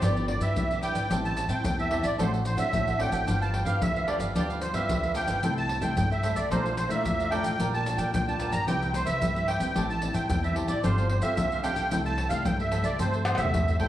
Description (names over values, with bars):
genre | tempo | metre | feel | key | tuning
samba and choro | 111 BPM | 4/4 | straight | C major | A4 = 439 Hz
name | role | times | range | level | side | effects
musette accordion | melody | 0.0-13.9 s | C5 to Bb5 | -29 LUFS | right 2 dB | none
cavaquinho | accompaniment | 0.0-13.9 s | D4 to Bb5 | -35 LUFS | right 3 dB | none
nylon-string guitar | accompaniment | 0.0-13.9 s | G2 to A4 | -34 LUFS | left 3 dB | none
upright bass | bass | 0.0-13.9 s | G1 to C3 | -31 LUFS | equal | none
maracas, surdo, pandeiro and tamborim | percussion | 0.0-13.9 s | none | -30 LUFS | left 1 dB | none
room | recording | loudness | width
wet large studio reverb, RT60 1.4 s | heard from further back in the room | -24 LUFS | side -12 dB against mid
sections
0.0-13.9 A section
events
drum fill 13.3-13.9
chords
0.0 Em7/G; 1.1 Am7; 2.2 D7/A; 3.3 G7; 5.4 C6; 6.5 Bbmaj7#11; 7.6 Gm7/Bb; 8.7 Cmaj7; 9.8 Am7; 10.8 G9sus4; 11.9 C6